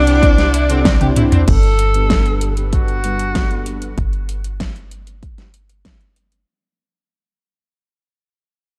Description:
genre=synthwave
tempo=96 BPM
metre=4/4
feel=straight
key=G major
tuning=A4 = 440 Hz
part: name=bright alto saxophone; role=melody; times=0.0-3.9 s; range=D4 to A4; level=-22 LUFS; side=equal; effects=tape echo
part: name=string machine, violins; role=second line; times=0.0-1.4 s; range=D5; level=-30 LUFS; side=equal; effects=none
part: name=lush unison pad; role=sustained chords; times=0.0-1.5 s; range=C3 to F#5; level=-30 LUFS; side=equal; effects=none
part: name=mellow synth brass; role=stabs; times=0.0-3.9 s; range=G2 to C5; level=-25 LUFS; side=equal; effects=chorus
part: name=tight sequencer bass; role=bass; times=0.0-6.4 s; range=G1 to C2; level=-21 LUFS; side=equal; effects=none
part: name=crunchy overdriven guitar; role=riff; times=0.1-1.4 s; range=C4 to G4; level=-29 LUFS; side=equal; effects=lush chorus, tape echo
part: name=pop drum kit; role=drums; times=0.1-6.4 s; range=crash cymbal, hi-hat, snare drum, toms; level=-22 LUFS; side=equal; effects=overdrive
part: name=electronic kick drum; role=drums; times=0.2-6.0 s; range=none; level=-19 LUFS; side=equal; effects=none
room=light reverb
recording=dark, warm production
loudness=-16 LUFS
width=mono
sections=0.0-1.5 A section; 1.5-6.5 B section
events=drum fill 0.9-1.5; fade-out 1.5-6.5; filter sweep on analog synth bass 1.5-6.5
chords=0.0 Cadd9; 1.5 Gadd9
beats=0.23 0.85 | 1.48 2.10 2.73 3.35 | 3.98 4.60 5.23 5.85

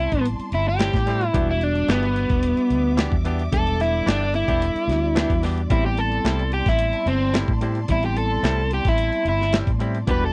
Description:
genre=straight-eighth soul blues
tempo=110 BPM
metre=4/4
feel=straight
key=unclear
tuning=A4 = 440 Hz
part: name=crunchy overdriven guitar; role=melody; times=0.0-10.3 s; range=B3 to B4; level=-25 LUFS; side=equal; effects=none
part: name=barky tine electric piano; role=accompaniment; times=0.0-10.3 s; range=G3 to A4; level=-32 LUFS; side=equal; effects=none
part: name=warm studio string section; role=sustained chords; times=0.0-10.3 s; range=D5 to D6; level=-40 LUFS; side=equal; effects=none
part: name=vintage muted fingered electric bass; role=bass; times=0.0-10.3 s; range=E1 to A2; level=-27 LUFS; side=equal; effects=none
part: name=boom bap sampler-style drum kit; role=drums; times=0.1-10.2 s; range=hi-hat, kick drum, snare drum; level=-26 LUFS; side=equal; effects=none
part: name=direct-recorded clean electric guitar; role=stabs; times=0.8-10.2 s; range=A2 to G4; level=-31 LUFS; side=equal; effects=lush chorus
room=little or no reverb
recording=dry, close 1970s-style studio recording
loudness=-21 LUFS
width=mono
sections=0.0-10.3 A section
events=overdriven electric guitar solo 0.0-10.3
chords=0.0 Am7; 1.3 Em7; 5.7 Am7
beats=0.25 0.80 | 1.34 1.89 2.44 2.98 | 3.53 4.07 4.62 5.17 | 5.71 6.26 6.80 7.35 | 7.89 8.44 8.98 9.53 | 10.08

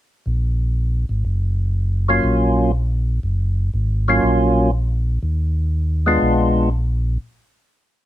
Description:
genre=jazz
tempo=121 BPM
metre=4/4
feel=swing 68% on 8ths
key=Eb minor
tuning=A4 = 440 Hz
part: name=mellow tonewheel organ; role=bass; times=0.3-7.2 s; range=Gb1 to Eb2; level=-18 LUFS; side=equal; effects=chorus vibrato, slow rotary speaker
part: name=percussive tonewheel organ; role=melody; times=2.1-6.7 s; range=Gb3 to F4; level=-16 LUFS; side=equal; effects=slow rotary speaker, overdrive
room=little or no reverb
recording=dark, warm production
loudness=-17 LUFS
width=side -13 dB against mid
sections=0.3-8.1 A section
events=break 7.2-8.1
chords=0.3 Ebm9; 6.2 Bb7b9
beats=| 0.26 0.76 1.25 1.75 | 2.25 2.75 3.24 3.74 | 4.24 4.74 5.23 5.73 | 6.23 6.72

